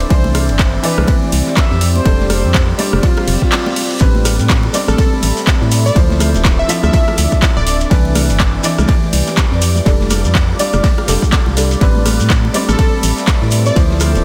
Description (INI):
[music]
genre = deep house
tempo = 123 BPM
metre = 4/4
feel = swing 59% on 16ths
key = A minor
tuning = A4 = 440 Hz
[part]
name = mellow horn-like synth lead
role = melody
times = 0.0-3.9 s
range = F4 to E5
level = -27 LUFS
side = equal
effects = chorus, analog delay
[part]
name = deep dark ambient pad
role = sustained chords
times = 0.0-14.2 s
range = F3 to B5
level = -29 LUFS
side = equal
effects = none
[part]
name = felt-muted upright piano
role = stabs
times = 0.0-14.2 s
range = E3 to E5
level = -23 LUFS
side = equal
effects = sidechain pumping, analog delay
[part]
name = organ-like FM bass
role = bass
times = 0.0-14.2 s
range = D1 to A2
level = -18 LUFS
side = equal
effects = sidechain pumping
[part]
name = breakbeat sampler-style drum kit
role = drums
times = 0.0-14.1 s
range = ride cymbal, snare drum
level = -34 LUFS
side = equal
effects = none
[part]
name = airy breathy pad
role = texture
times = 0.0-14.2 s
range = C4 to B5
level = -30 LUFS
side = equal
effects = chorus, sidechain pumping
[part]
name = string machine, violins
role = texture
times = 0.0-14.2 s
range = D5 to E6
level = -34 LUFS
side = equal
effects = none
[part]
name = deep house drum kit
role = drums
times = 0.1-14.1 s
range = handclaps, hi-hat, ride cymbal, rim click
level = -23 LUFS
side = equal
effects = overdrive, dub echo
[part]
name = electronic kick drum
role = drums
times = 0.1-13.9 s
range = none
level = -16 LUFS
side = equal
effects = overdrive
[part]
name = congas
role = percussion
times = 0.2-14.2 s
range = none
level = -28 LUFS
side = equal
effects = none
[part]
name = reverse cymbal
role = sound effects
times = 3.4-4.0 s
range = none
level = -30 LUFS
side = equal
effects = none
[part]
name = shekere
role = percussion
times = 4.0-14.2 s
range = none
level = -28 LUFS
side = equal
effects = none
[part]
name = plucky unison lead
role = melody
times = 4.9-7.8, 12.7-13.8 s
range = A4 to E5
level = -24 LUFS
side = equal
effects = cassette tape, analog delay
[sound]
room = light reverb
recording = echo-heavy mix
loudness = -13 LUFS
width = mono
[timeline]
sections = 0.0-14.2 A section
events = reverse cymbal 3.4-4.0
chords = 0.1 Cmaj9; 1.8 F69; 4.0 Am11; 6.0 Dm9; 7.9 Cmaj9; 9.6 F69; 11.8 Am11